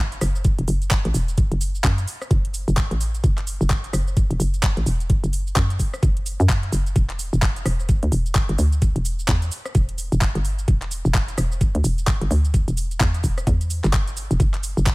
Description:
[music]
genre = bass house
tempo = 129 BPM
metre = 4/4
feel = swing 60% on 16ths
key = unclear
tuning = A4 = 440 Hz
[part]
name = hollow knocking FM bass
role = bass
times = 0.0-14.9 s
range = E1 to F#2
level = -22 LUFS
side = equal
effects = tube saturation, sidechain pumping
[part]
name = garage drum kit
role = drums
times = 0.1-14.9 s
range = handclaps, hi-hat, rim click, shaker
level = -28 LUFS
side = equal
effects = studio reverb
[part]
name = electronic kick drum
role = drums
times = 0.4-14.9 s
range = none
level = -19 LUFS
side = equal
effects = studio reverb
[sound]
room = little or no reverb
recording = none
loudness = -19 LUFS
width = side -23 dB against mid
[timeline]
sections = 0.0-14.9 A section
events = none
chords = none

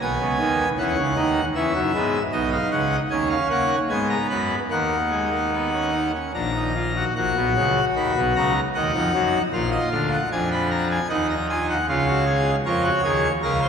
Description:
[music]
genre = classical, baroque-style 3-part fugue for pipe organ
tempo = 76 BPM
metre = 3/4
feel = straight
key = Eb minor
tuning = A4 = 440 Hz
[part]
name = pipe organ, full organ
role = solo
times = 0.0-13.7 s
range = Bb1 to Cb6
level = -20 LUFS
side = equal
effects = none
[sound]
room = wet church reverb, RT60 3.4 s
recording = minimal, uncompressed stereo recording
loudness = -20 LUFS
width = side -7 dB against mid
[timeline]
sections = 0.0-7.2 A section; 7.2-13.7 B section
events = none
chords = 0.0 G#m/B; 1.6 E; 2.3 B; 3.9 Abm; 4.7 Ebm; 6.3 Bb; 7.2 Ebm/Bb; 8.7 Ebm; 9.5 Bb7; 11.1 Ebm; 11.9 Bbm/Db

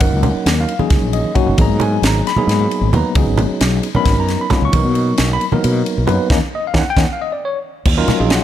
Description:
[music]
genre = electric jazz fusion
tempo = 267 BPM (eighths)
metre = 7/8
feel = straight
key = Eb minor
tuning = A4 = 442 Hz
[part]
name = tine electric piano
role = accompaniment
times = 0.0-8.4 s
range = Gb3 to Db6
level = -18 LUFS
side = left 2 dB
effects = medium stereo tremolo
[part]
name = fretless electric bass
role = bass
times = 0.0-8.4 s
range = Gb1 to B2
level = -17 LUFS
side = equal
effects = none
[part]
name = crisp fusion drum kit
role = drums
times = 0.0-8.4 s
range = crash cymbal, kick drum, ride cymbal, snare drum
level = -19 LUFS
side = equal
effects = none
[part]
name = congas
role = percussion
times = 0.0-8.2 s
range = none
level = -20 LUFS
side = right 3 dB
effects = none
[sound]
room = light reverb, small room ambience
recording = none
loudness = -13 LUFS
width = side -11 dB against mid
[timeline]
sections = 0.0-7.9 A section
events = tine electric piano fill 0.9-1.6; drum fill 1.2-1.6, 6.3-7.9; band accent 6.3-7.9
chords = 0.0 Gb6; 1.6 Abm9; 3.2 Db9sus4; 4.7 Bmaj7; 6.3 Eb5; 7.9 Ebm9

